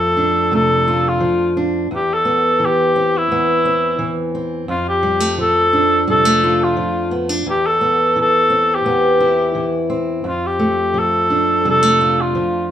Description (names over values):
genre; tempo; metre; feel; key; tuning
acoustic folk-pop ballad; 86 BPM; 4/4; straight; unclear; A4 = 440 Hz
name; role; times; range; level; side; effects
mellow cor anglais; melody; 0.0-12.7 s; E4 to A4; -15 LUFS; left 1 dB; none
fingerpicked steel-string acoustic guitar; accompaniment; 0.0-12.7 s; E2 to F4; -18 LUFS; right 1 dB; none
room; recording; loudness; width
moderate large studio reverb, RT60 0.8 s; band playing live in one room; -14 LUFS; side -10 dB against mid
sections
0.0-12.7 A section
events
none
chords
0.0 F6; 1.9 Cmaj7/E; 4.7 F6; 7.5 Cmaj7/E; 10.3 F6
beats
0.52 1.21 | 1.91 2.60 3.30 3.99 | 4.68 5.38 6.07 6.77 | 7.46 8.16 8.86 9.56 | 10.26 10.96 11.66 12.36